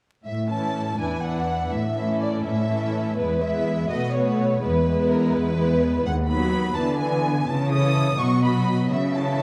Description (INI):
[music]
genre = quick classical-period movement for symphony orchestra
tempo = 83 BPM (dotted quarters)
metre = 6/8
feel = straight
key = A major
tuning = A4 = 440 Hz
[part]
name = warm studio cello section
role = bass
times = 0.2-9.4 s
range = D#2 to D3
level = -26 LUFS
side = equal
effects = none
[part]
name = warm studio violin section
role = melody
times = 0.3-9.4 s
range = Bb4 to D#6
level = -29 LUFS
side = equal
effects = none
[part]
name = warm studio violin section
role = second line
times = 0.5-9.4 s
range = E4 to E5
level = -33 LUFS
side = equal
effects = none
[part]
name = rich studio viola section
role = accompaniment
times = 0.5-9.4 s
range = E3 to E4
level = -29 LUFS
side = equal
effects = none
[sound]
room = moderate scoring stage reverb, RT60 1.7 s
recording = dark, warm production, vinyl crackle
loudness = -23 LUFS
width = mono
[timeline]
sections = 0.2-9.4 A section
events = none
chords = 0.2 A; 1.0 E5; 1.7 A; 3.2 E; 3.9 B5; 4.6 E; 6.1 B/D#; 6.8 E7/D; 7.5 A/C#; 8.2 B; 8.9 A/C#